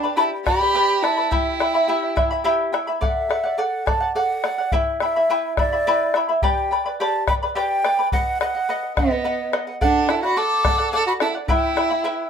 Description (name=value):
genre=andean folk, Andean ensemble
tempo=71 BPM (dotted quarters)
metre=6/8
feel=straight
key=E minor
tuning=A4 = 440 Hz
part: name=mellow large quena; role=melody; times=0.0-12.3 s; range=D5 to D6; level=-23 LUFS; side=equal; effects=none
part: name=warm violin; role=second line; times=0.0-2.4, 9.0-12.3 s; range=B3 to A4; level=-23 LUFS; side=right 5 dB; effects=none
part: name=charango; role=accompaniment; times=0.0-12.3 s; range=E4 to B5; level=-22 LUFS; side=equal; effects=none
part: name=bombo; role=percussion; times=0.5-11.9 s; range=none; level=-24 LUFS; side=left 2 dB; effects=none
room=moderate studio reverb, RT60 0.5 s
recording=minimal, uncompressed stereo recording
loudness=-18 LUFS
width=side -7 dB against mid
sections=0.0-3.0 A section; 3.0-12.3 A section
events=none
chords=0.0 G; 1.3 Em; 3.0 D; 4.7 Em; 6.4 G; 8.1 B; 9.8 D; 11.5 Em